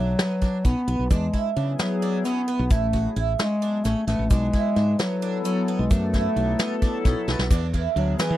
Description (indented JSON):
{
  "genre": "progressive instrumental, band music in an uneven meter",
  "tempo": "262 BPM (eighths)",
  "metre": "7/8",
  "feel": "straight",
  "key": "B dorian",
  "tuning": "A4 = 442 Hz",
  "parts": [
    { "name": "mellow bass clarinet", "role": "melody", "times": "0.0-8.4 s", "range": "E3 to B3", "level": "-25 LUFS", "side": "left 1 dB", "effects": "none" },
    { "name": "picked twelve-string acoustic guitar", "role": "arpeggios", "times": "0.0-8.3 s", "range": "B3 to F#4", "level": "-30 LUFS", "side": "right 11 dB", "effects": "none" },
    { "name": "woody fretless electric bass", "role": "bass", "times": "0.0-8.4 s", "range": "A1 to E3", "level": "-25 LUFS", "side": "equal", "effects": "none" },
    { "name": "vintage brush drum kit", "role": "drums", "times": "0.2-8.3 s", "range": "hi-hat, kick drum, ride cymbal, snare drum", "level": "-23 LUFS", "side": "equal", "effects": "none" },
    { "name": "egg shaker", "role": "percussion", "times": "0.2-8.4 s", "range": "none", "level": "-43 LUFS", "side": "left 27 dB", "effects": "none" },
    { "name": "chorused pulse-width pad", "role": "accompaniment", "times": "1.6-8.3 s", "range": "F#3 to B4", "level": "-31 LUFS", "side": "left 4 dB", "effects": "none" }
  ],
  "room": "little or no reverb",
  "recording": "dry, close 1970s-style studio recording",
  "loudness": "-21 LUFS",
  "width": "side -14 dB against mid",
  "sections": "0.0-7.5 A section",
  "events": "drum fill 7.3",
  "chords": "0.0 Bm; 1.1 E7; 2.7 Amaj7; 4.3 Bm7; 7.5 E7"
}